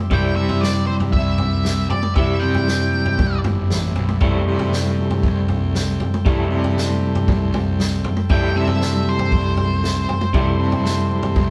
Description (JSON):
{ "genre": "psychedelic rock", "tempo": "117 BPM", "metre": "4/4", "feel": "straight", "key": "unclear", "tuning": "A4 = 440 Hz", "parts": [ { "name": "combo organ", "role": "sustained chords", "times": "0.0-11.5 s", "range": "G4 to G5", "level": "-39 LUFS", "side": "equal", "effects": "none" }, { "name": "electric guitar through a small old amp", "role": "riff", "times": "0.0-11.5 s", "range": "C3 to E4", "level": "-25 LUFS", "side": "equal", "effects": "tremolo" }, { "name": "octave-fuzz lead guitar", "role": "melody", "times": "0.1-3.4, 8.3-11.5 s", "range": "C5 to G5", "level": "-28 LUFS", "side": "equal", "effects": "distortion" }, { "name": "fuzz picked electric bass", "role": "bass", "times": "0.1-11.5 s", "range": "G1 to C3", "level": "-26 LUFS", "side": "equal", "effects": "overdrive" }, { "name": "vintage drum kit", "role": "drums", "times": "0.1-11.5 s", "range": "kick drum, snare drum, toms", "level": "-22 LUFS", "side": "equal", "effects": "none" }, { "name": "congas", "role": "percussion", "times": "0.4-11.2 s", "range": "none", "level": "barely audible", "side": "none", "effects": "none" } ], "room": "moderate stone room reverb, RT60 1.1 s", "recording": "band playing live in one room", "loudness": "-19 LUFS", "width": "mono", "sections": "0.0-11.5 A section", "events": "none", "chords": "0.0 C; 4.2 Am7/C" }